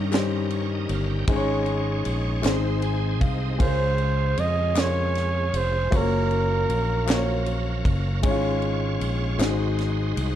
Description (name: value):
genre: slow gospel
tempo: 52 BPM (dotted quarters)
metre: 6/8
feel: straight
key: Db major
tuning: A4 = 439 Hz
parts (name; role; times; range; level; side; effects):
- warm concert grand piano; accompaniment; 0.0-10.4 s; Ab2 to C6; -28 LUFS; left 3 dB; none
- bright tonewheel organ; sustained chords; 0.0-10.4 s; Gb3 to Ab5; -32 LUFS; right 3 dB; slow rotary speaker, overdrive, chorus vibrato
- fingered electric bass; bass; 0.0-10.4 s; F1 to G2; -25 LUFS; equal; none
- tight funk drum kit; drums; 0.1-10.3 s; kick drum, ride cymbal, snare drum; -28 LUFS; equal; none
- group handclap; percussion; 0.1-9.8 s; none; -36 LUFS; left 6 dB; none
- warm flugelhorn; melody; 3.6-7.5 s; Bb4 to Eb5; -25 LUFS; right 3 dB; slapback echo
room: light reverb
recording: dark, warm production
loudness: -21 LUFS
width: side -11 dB against mid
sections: 0.0-10.4 A section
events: grand piano fill 2.4-3.6; tonewheel organ fill 2.4-3.6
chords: 0.0 Eb7; 1.3 Absus4; 2.4 Ab; 3.6 Dbmaj7; 5.9 Gbmaj7; 8.2 Db/Ab; 9.4 Ab7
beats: 0.12 | 1.28 2.44 | 3.60 4.76 | 5.92 7.08 | 8.24 9.40